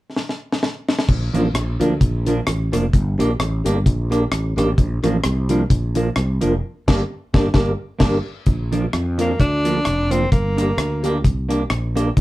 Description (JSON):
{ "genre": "ska", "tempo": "130 BPM", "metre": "4/4", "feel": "swing 56% on 8ths", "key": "Bb major", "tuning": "A4 = 439 Hz", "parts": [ { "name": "deep reggae drum kit", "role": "drums", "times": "0.2-12.2 s", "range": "crash cymbal, hi-hat, kick drum, rim click, snare drum", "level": "-19 LUFS", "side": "equal", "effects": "none" }, { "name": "sustaining fretless electric bass", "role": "bass", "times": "1.1-12.2 s", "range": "F1 to F2", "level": "-21 LUFS", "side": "equal", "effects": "none" }, { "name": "semi-hollow electric guitar", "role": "accompaniment", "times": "1.3-12.1 s", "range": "F3 to G4", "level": "-23 LUFS", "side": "right 2 dB", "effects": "none" }, { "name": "mellow tonewheel organ", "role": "stabs", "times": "1.3-12.1 s", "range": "D4 to Bb4", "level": "-24 LUFS", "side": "left 1 dB", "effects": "chorus vibrato, fast rotary speaker" }, { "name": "breathy tenor saxophone", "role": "melody", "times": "9.2-11.2 s", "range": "Bb3 to D4", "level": "-22 LUFS", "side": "equal", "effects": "none" } ], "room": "moderate studio reverb, RT60 0.5 s", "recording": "band playing live in one room, cassette tape", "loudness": "-17 LUFS", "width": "side -17 dB against mid", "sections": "0.0-1.1 A section; 1.1-8.5 B section; 8.5-12.2 C section", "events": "drum fill 0.2-1.1; band accent 6.6-8.5", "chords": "0.0 N.C.; 1.1 Bb; 2.9 Gm; 4.8 Bb; 6.6 Gm; 8.5 Bb; 10.3 Gm", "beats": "0.16 0.62 | 1.08 1.54 2.00 2.46 | 2.93 3.39 3.85 4.31 | 4.77 5.23 5.70 6.16 | 6.62 7.08 7.54 8.01 | 8.47 8.93 9.39 9.86 | 10.32 10.79 11.25 11.71 | 12.18" }